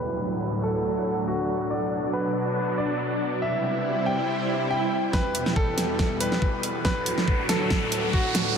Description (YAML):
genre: heavy wobble dubstep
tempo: 140 BPM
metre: 4/4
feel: swing 53% on 16ths, half-time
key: E minor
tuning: A4 = 442 Hz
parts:
  - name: bright grand piano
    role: melody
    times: 0.0-8.5 s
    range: F#4 to G5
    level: -29 LUFS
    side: equal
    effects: analog delay
  - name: supersaw pad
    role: sustained chords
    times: 0.0-8.5 s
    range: D2 to E4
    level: -28 LUFS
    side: equal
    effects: ensemble chorus, sidechain pumping
  - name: downlifter, swell and riser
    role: sound effects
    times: 0.0-1.7, 4.4-8.6 s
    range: none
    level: -34 LUFS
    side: equal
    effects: none
  - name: airy breathy pad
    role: texture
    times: 0.0-8.6 s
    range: D4 to G5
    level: -32 LUFS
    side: equal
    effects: chorus, phaser, sidechain pumping
  - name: dubstep drum kit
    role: drums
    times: 5.1-8.4 s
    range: hi-hat, snare drum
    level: -28 LUFS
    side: right 1 dB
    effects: none
  - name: electronic kick drum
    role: drums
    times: 5.1-8.2 s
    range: none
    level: -25 LUFS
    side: equal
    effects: none
room: wet huge ambient reverb, RT60 8.4 s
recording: dreamy mix soaked in reverb, low-pass filter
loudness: -23 LUFS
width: side -6 dB against mid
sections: 0.0-5.1 A section; 5.1-8.6 B section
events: filter sweep 0.0-5.1, 5.1-8.6; swell 4.4-5.1; build-up 5.1-8.6; drum fill 5.1-8.6; riser 5.1-8.6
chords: 0.0 D; 1.7 Bm; 3.4 C; 5.1 Em; 6.8 D